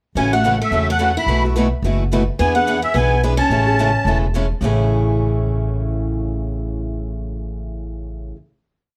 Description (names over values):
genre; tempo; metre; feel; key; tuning
acoustic string swing (jazz manouche); 215 BPM; 4/4; swing 56% on 8ths; A major; A4 = 440 Hz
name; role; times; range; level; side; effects
musette accordion; melody; 0.2-4.2 s; E5 to B5; -22 LUFS; equal; plate reverb
picked acoustic archtop guitar; second line; 0.2-4.2 s; G#3 to E4; -25 LUFS; equal; none
picked steel-string acoustic guitar; accompaniment; 0.2-8.4 s; A2 to G#4; -28 LUFS; equal; none
picked steel-string acoustic guitar; accompaniment; 0.2-8.4 s; A2 to B4; -28 LUFS; equal; none
upright bass; bass; 0.2-8.3 s; E1 to E2; -23 LUFS; equal; none
room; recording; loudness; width
moderate studio reverb, RT60 0.5 s; none; -18 LUFS; mono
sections
0.2-4.6 A section; 4.6-6.9 final chord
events
none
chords
0.2 A6; 1.3 B7sus4; 2.4 E7; 3.5 Amaj7